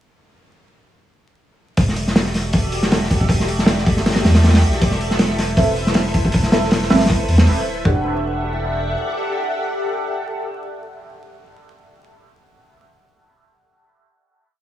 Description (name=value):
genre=drum and bass, jungle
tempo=158 BPM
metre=4/4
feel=swing 55% on 16ths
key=E minor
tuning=A4 = 444 Hz
part: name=soft string machine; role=sustained chords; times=1.9-11.7 s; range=G4 to F#5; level=-24 LUFS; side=left 1 dB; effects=phaser, ensemble chorus
part: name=soft dub sub bass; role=bass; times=1.8-9.0 s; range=D1 to E2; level=-20 LUFS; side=equal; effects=none
part: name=crunchy breakbeat drum kit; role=drums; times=1.8-7.9 s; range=hi-hat, kick drum, snare drum, toms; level=-16 LUFS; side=equal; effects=none
part: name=deep mellow chord stab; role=stabs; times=5.6-12.1 s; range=C4 to F#5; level=-23 LUFS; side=right 2 dB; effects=chorus, phaser, dub echo
room=light reverb, studio reverb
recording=vinyl crackle, small room ambience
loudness=-15 LUFS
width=side -12 dB against mid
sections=1.8-7.9 drop; 7.9-10.9 final chord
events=drop 1.8-7.9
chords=1.8 Em11; 4.8 Amadd9/E; 7.9 Em11